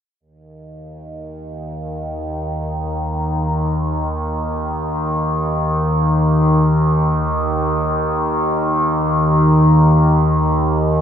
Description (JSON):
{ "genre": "world meditative, free-time meditation music", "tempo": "free time", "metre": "none", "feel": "none", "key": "unclear", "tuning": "A4 = 439 Hz", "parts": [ { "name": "overtone-sweeping drone", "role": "solo", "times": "1.1-11.0 s", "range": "Eb2 to Eb3", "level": "-15 LUFS", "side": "equal", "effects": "chorus, built-in reverb, diffuse ambient delay" } ], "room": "wet huge ambient reverb, RT60 4.7 s", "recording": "dark, warm production", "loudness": "-15 LUFS", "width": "side -9 dB against mid", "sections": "0.2-11.0 A section", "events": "none", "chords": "none", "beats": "free time" }